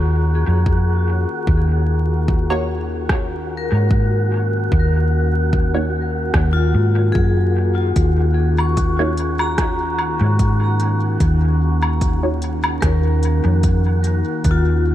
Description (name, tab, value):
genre	ambient dub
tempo	74 BPM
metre	4/4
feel	swing 54% on 16ths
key	Eb minor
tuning	A4 = 442 Hz
part	warbly tape-like pad	sustained chords	0.0-14.9 s	Eb3 to Bb4	-28 LUFS	equal	chorus, built-in reverb
part	vibraphone with medium hard mallets	arpeggios	0.0-14.9 s	F4 to Db6	-24 LUFS	left 4 dB	dub echo
part	hollow-body short-scale fingered electric bass	bass	0.0-14.9 s	Eb2 to Ab2	-17 LUFS	equal	none
part	wind-like tuned noise texture	texture	0.0-14.9 s	Gb4	-28 LUFS	right 2 dB	built-in reverb
part	electronic kick drum	drums	0.7-14.6 s	none	-20 LUFS	equal	none
part	filtered dub chord stab	stabs	2.5-12.4 s	Bb3 to Db5	-26 LUFS	right 2 dB	phaser, lush chorus, cassette tape, dub echo
part	organic electronic drum kit	drums	3.1-14.6 s	hi-hat, rim click, woodblock	-26 LUFS	equal	dub echo
room	light reverb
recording	vinyl crackle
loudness	-15 LUFS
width	side -13 dB against mid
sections	0.0-14.9 A section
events	fade-in on ambient pad 0.0-14.9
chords	0.0 Ebm7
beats	0.66 | 1.47 2.28 3.09 3.90 | 4.72 5.53 6.34 7.15 | 7.96 8.77 9.58 10.39 | 11.20 12.01 12.82 13.63 | 14.45